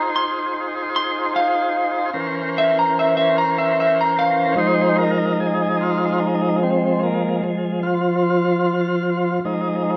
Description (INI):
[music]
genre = blues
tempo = 49 BPM (dotted quarters)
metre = 12/8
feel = straight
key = F minor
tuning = A4 = 442 Hz
[part]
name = electric slide guitar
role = melody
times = 0.0-4.6 s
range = E5 to C6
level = -21 LUFS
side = equal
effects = none
[part]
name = tonewheel organ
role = sustained chords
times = 0.0-10.0 s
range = E3 to C5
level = -21 LUFS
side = equal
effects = slow rotary speaker, overdrive
[sound]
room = wet studio reverb, RT60 1.0 s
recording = band playing live in one room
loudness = -20 LUFS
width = mono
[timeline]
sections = 0.0-4.6 A section; 4.6-10.0 A section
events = electric slide guitar solo 0.0-4.6; tonewheel organ solo 4.6-10.0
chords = 0.0 Fm7; 2.1 C7b9; 4.6 Fm7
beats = 0.91 2.13 3.35 | 4.57 5.79 7.01 8.22 | 9.44